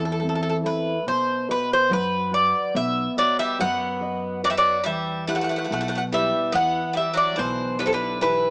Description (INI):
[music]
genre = greek folk, Greek bouzouki band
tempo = 143 BPM (eighths)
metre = 9/8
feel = straight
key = E minor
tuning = A4 = 439 Hz
[part]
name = Greek bouzouki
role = melody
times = 0.0-8.5 s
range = A4 to F#5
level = -25 LUFS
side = equal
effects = none
[part]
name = nylon-string guitar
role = accompaniment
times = 0.0-8.5 s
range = B2 to F#5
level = -30 LUFS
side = equal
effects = none
[part]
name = upright bass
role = bass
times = 0.0-8.5 s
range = B1 to F#2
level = -37 LUFS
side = equal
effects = none
[part]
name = Greek bouzouki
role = second line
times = 3.2-8.5 s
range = C3 to B3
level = -32 LUFS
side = equal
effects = none
[sound]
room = light reverb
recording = small speaker sound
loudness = -23 LUFS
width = mono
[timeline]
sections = 0.0-8.5 A section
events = none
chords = 0.0 Am; 1.1 B; 4.9 Em